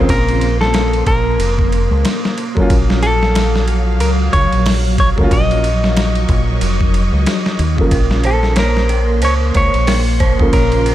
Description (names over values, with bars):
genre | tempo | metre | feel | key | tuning
trip hop | 92 BPM | 4/4 | swing 59% on 16ths | Bb harmonic minor | A4 = 441 Hz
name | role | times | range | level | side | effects
dark upright piano | accompaniment | 0.0-10.9 s | Db3 to F4 | -23 LUFS | equal | tremolo, tape echo
string machine, cellos | sustained chords | 0.0-10.9 s | Gb3 to Db6 | -22 LUFS | left 1 dB | ensemble chorus
deep dub fingered electric bass | bass | 0.0-10.9 s | F1 to Eb2 | -16 LUFS | equal | tube saturation
clean electric guitar | melody | 0.1-10.9 s | A4 to Eb5 | -19 LUFS | equal | tape echo
dusty soul sampler-style drum kit | drums | 0.1-10.9 s | hi-hat, kick drum, ride cymbal, snare drum | -18 LUFS | equal | overdrive, studio reverb
dark detuned synth bell | arpeggios | 7.9-10.9 s | Bb4 to Db5 | -22 LUFS | right 4 dB | chorus, tremolo, ping-pong delay
room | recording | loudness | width
little or no reverb | none | -12 LUFS | side -13 dB against mid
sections
0.0-10.9 A section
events
none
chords
0.0 Bbmadd9; 2.7 Gbmaj7/Bb; 5.3 Ebm7/Bb; 7.9 Bbmadd9